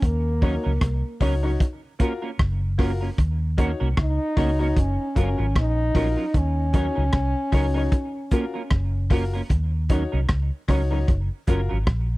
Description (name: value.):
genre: roots reggae.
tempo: 76 BPM.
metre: 4/4.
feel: swing 56% on 16ths.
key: Eb dorian.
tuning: A4 = 440 Hz.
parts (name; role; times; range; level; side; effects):
mellow French horn; melody; 0.0-9.1 s; Bb3 to Eb4; -27 LUFS; equal; tape echo.
vintage muted fingered electric bass; bass; 0.0-12.2 s; Gb1 to Eb2; -23 LUFS; equal; none.
crunchy breakbeat drum kit; drums; 0.0-12.1 s; hi-hat, kick drum, rim click; -21 LUFS; equal; none.
clean electric guitar; accompaniment; 0.4-11.8 s; Gb3 to Bb4; -31 LUFS; right 4 dB; analog chorus, tape echo.
clear upright piano; stabs; 0.4-11.7 s; Eb4 to Db5; -29 LUFS; left 4 dB; none.
room: little or no reverb.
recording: dry, close 1970s-style studio recording.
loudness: -20 LUFS.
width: side -20 dB against mid.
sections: 0.0-12.2 A section.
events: none.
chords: 0.0 Ebm7; 1.6 Gbmaj7; 3.2 Ebm7; 4.8 Gbmaj7; 6.3 Ebm7; 7.9 Gbmaj7; 9.5 Ebm7; 11.1 Gbmaj7.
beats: | 0.03 0.82 1.61 2.40 | 3.19 3.98 4.76 5.55 | 6.34 7.13 7.92 8.71 | 9.50 10.29 11.08 11.87.